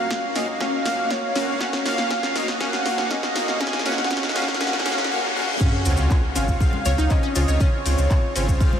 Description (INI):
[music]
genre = progressive house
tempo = 120 BPM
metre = 4/4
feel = straight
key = Db major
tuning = A4 = 440 Hz
[part]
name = warm velvety synth lead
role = melody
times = 0.0-8.8 s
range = C5 to Ab5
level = -27 LUFS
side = right 1 dB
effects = chorus, sidechain pumping, ping-pong delay
[part]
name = soft supersaw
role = stabs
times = 0.0-8.7 s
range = Db3 to F5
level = -27 LUFS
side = equal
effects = sidechain pumping, ping-pong delay
[part]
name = riser, reverse cymbal and sub drop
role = sound effects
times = 0.1-7.6 s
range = none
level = -33 LUFS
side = equal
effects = none
[part]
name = electronic kick drum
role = drums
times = 0.1-8.7 s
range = none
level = -20 LUFS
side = equal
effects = high-pass filter on kick, small room ambience
[part]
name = house drum kit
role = drums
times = 0.1-8.5 s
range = crash cymbal, handclaps, hi-hat, snare drum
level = -27 LUFS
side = equal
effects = small room ambience
[part]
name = analog pluck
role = arpeggios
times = 0.4-8.4 s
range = Db4 to Db5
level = -28 LUFS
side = left 1 dB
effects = chorus, sidechain pumping, ping-pong delay
[part]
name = maracas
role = percussion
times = 5.6-8.7 s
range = none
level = -35 LUFS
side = left 4 dB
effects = none
[part]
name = saturated sub bass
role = bass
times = 5.9-8.6 s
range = Ab1 to Db2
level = -21 LUFS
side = equal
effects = sidechain pumping
[part]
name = congas and cowbell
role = percussion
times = 6.7-8.8 s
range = none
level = -36 LUFS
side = left 4 dB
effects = sidechain pumping on perc
[sound]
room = wet huge ambient reverb, RT60 8.3 s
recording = dreamy mix soaked in reverb, high-pass filter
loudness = -19 LUFS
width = side -9 dB against mid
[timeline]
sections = 0.0-5.6 A section; 5.6-8.8 B section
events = build-up 0.0-5.6; drum fill 0.0-5.1; filter sweep on synth pluck 0.0-5.6; filter sweep 0.0-5.6; reverse cymbal 4.6-5.6; drop 5.6-8.8; impact 5.6-7.6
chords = 0.0 Gbmaj7; 5.6 Dbmaj7